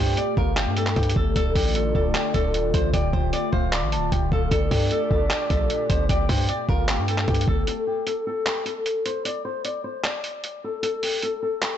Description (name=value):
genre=hip hop, trap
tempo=152 BPM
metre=4/4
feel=half-time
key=unclear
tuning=A4 = 445 Hz
part: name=flamenco guitar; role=melody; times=0.0-11.8 s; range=G4 to D5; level=-27 LUFS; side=left 4 dB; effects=low-pass filter
part: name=soft octave-layered synth lead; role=second line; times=0.0-7.3 s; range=D5 to A5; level=-30 LUFS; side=right 4 dB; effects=chorus, tremolo, tape echo
part: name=warbly tape-like pad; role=sustained chords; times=0.0-7.6 s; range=Bb2 to G4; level=-30 LUFS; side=left 2 dB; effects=chorus, built-in reverb
part: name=hard-hitting 808-style bass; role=bass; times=0.0-7.7 s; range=D1 to G2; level=-25 LUFS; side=equal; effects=none
part: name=lo-fi sampler-style drum kit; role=drums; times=0.2-11.7 s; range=handclaps, hi-hat, kick drum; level=-24 LUFS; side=equal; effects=soft clipping on snare
room=light reverb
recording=blown-out, overdriven recording, overdrive, nothing above 8.0 kHz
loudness=-21 LUFS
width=side -10 dB against mid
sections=0.0-7.7 A section; 7.7-11.8 B section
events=break 7.7-11.8; filter sweep on nylon-string guitar 7.7-11.8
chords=0.0 Gmadd9; 1.4 Dm; 4.5 Gmadd9; 7.7 N.C.